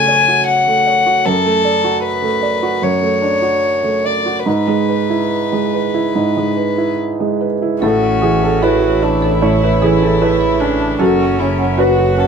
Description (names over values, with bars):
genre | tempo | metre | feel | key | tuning
neoclassical piano and strings | 70-77 BPM | 4/4 | rubato | A major | A4 = 440 Hz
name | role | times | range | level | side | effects
warm violin | melody | 0.0-12.3 s | D4 to G#5 | -17 LUFS | left 4 dB | none
felt-muted upright piano | accompaniment | 0.0-12.3 s | F#2 to D5 | -16 LUFS | right 4 dB | none
warm viola | accompaniment | 7.8-12.3 s | C#4 to F#4 | -20 LUFS | right 5 dB | none
marimba with hard mallets | arpeggios | 7.8-12.3 s | F#4 to A5 | -20 LUFS | left 7 dB | none
rich double bass | bass | 7.8-12.3 s | F#1 to A1 | -19 LUFS | equal | none
room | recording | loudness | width
moderate studio reverb, RT60 0.7 s | band playing live in one room | -12 LUFS | side -6 dB against mid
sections
0.0-7.8 A section; 7.8-12.3 A section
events
none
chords
0.0 F#m; 1.3 D/F#; 4.5 E/G#; 7.8 A; 11.0 F#m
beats
0.47 | 1.26 2.04 2.82 3.62 | 4.46 5.32 6.16 7.00 | 7.83 8.63 9.43 10.22 | 11.00 11.79